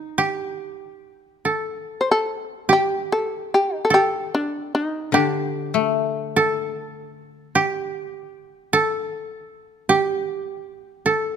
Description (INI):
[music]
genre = japanese traditional, Japanese chamber music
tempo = 47-53 BPM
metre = 4/4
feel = rubato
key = unclear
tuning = A4 = 440 Hz
[part]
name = koto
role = second line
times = 0.0-11.4 s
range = Eb4 to A4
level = -21 LUFS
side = right 3 dB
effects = none
[part]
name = shamisen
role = melody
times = 2.0-7.5 s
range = D4 to C5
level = -20 LUFS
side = left 1 dB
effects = none
[part]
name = koto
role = accompaniment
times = 5.1-8.5 s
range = D3 to A3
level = -23 LUFS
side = left 10 dB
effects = none
[sound]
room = light reverb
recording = close, detailed microphones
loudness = -20 LUFS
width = side -8 dB against mid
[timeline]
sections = 0.2-11.4 A section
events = none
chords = none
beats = | 0.20 1.47 2.71 3.92 | 5.15 6.37 7.57 8.74 | 9.89 11.05